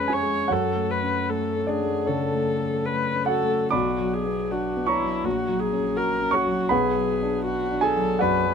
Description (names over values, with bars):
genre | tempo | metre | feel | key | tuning
classical, romantic duo for viola and grand piano | 65-83 BPM | 4/4 | rubato | F# minor | A4 = 441 Hz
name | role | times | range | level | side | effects
dark viola | melody | 0.0-8.5 s | E4 to C#5 | -25 LUFS | left 3 dB | none
dark grand piano | accompaniment | 0.0-8.5 s | A#1 to D6 | -24 LUFS | right 1 dB | none
room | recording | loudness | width
light reverb | close, detailed microphones | -22 LUFS | side -6 dB against mid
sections
0.0-8.5 A section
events
none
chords
0.0 C#/E#; 0.5 F#m; 3.7 Bm; 5.3 F#/A#; 6.7 Bm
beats
| 0.51 1.30 2.08 2.85 | 3.73 4.52 5.25 5.98 | 6.72 7.47 8.22